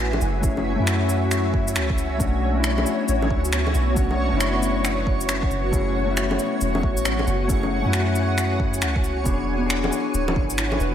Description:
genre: future garage.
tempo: 136 BPM.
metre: 4/4.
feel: swing 64% on 16ths.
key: F# minor.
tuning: A4 = 440 Hz.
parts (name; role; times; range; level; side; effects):
mellow electric guitar; accompaniment; 0.0-10.9 s; A3 to G#4; -26 LUFS; left 4 dB; vintage 12-bit sampler grit, sidechain pumping, ping-pong delay.
granular cloud pad; sustained chords; 0.0-10.9 s; B3 to G#5; -27 LUFS; equal; built-in reverb, ensemble chorus, sidechain pumping.
soft 808-style bass; bass; 0.0-10.9 s; D1 to F#2; -24 LUFS; right 1 dB; sidechain pumping.
backwards swelling texture; texture; 0.1-10.9 s; C#5; -33 LUFS; right 3 dB; built-in reverb.
electronic bongos, shaker and finger snaps; drums; 0.1-10.9 s; none; -27 LUFS; equal; overdrive.
electronic kick drum; drums; 0.4-10.5 s; none; -24 LUFS; right 1 dB; overdrive.
room: moderate lush hall reverb, RT60 1.7 s, digital ambience.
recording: dreamy mix soaked in reverb.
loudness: -20 LUFS.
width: side -10 dB against mid.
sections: 0.0-10.9 A section.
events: none.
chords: 0.0 F#m7; 2.2 Bm7; 5.7 F#m7; 9.3 E7.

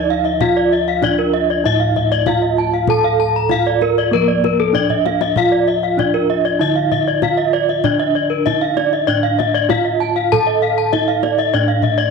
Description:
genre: Balinese gamelan.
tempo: 97 BPM.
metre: 4/4.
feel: straight.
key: D pelog.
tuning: A4 = 442 Hz.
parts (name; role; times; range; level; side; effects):
gamelan-type bronze metallophone; melody; 0.0-12.1 s; Bb3 to A4; -20 LUFS; right 4 dB; none.
gamelan-type bronze metallophone; arpeggios; 0.0-11.8 s; Bb4 to A5; -20 LUFS; right 9 dB; none.
gamelan-type bossed gongs; bass; 0.0-12.1 s; A2 to A4; -21 LUFS; equal; none.
kendang; percussion; 0.1-12.0 s; none; -24 LUFS; left 7 dB; none.
gamelan-type bronze metallophone; arpeggios; 0.2-12.1 s; A4 to Bb5; -18 LUFS; left 8 dB; none.
room: wet echo chamber reverb, RT60 1.8 s, small room ambience.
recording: 1960s-style stereo with parts hard left and right.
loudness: -14 LUFS.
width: side -4 dB against mid.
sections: 0.0-12.1 A section.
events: drum fill 4.7-5.4.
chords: none.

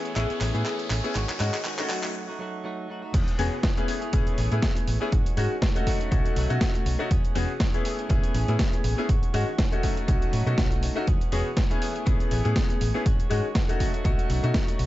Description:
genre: filtered disco house.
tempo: 121 BPM.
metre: 4/4.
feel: swing 56% on 16ths.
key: E major.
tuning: A4 = 440 Hz.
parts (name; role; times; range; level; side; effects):
bright grand piano; accompaniment; 0.0-14.9 s; G#3 to G#4; -30 LUFS; left 2 dB; phaser, sidechain pumping, low-pass filter.
direct-recorded clean electric guitar; riff; 0.0-14.9 s; D#3 to G#4; -36 LUFS; right 2 dB; lush chorus, sidechain pumping, low-pass filter.
riser; sound effects; 0.0-2.1 s; none; -38 LUFS; left 3 dB; none.
dusty soul sampler-style drum kit; drums; 0.1-14.9 s; crash cymbal, handclaps, hi-hat, snare drum; -32 LUFS; equal; overdrive, studio reverb, sidechain pumping on hats, sidechain pumping on cymbals.
hollow-body short-scale fingered electric bass; bass; 0.2-14.9 s; E1 to B2; -26 LUFS; equal; sidechain pumping, low-pass filter.
electronic kick drum; drums; 3.1-14.7 s; none; -24 LUFS; equal; studio reverb.
room: light reverb.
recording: dark, warm production, nothing above 7.8 kHz.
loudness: -23 LUFS.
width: side -16 dB against mid.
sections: 0.0-3.1 A section; 3.1-14.9 B section.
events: build-up 0.0-3.1; drum fill 0.0-2.1; riser 0.0-2.1; break 2.1-3.1; drop 3.1-14.9.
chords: 0.0 Amaj7; 1.2 G#7sus4; 1.9 F#m6; 3.1 E6; 3.9 Amaj7; 5.1 G#7sus4; 5.9 B7; 7.1 E6; 7.8 Amaj7; 9.1 G#7sus4; 9.8 B7; 11.1 E6; 11.8 Amaj7; 13.1 G#7sus4; 13.8 B7.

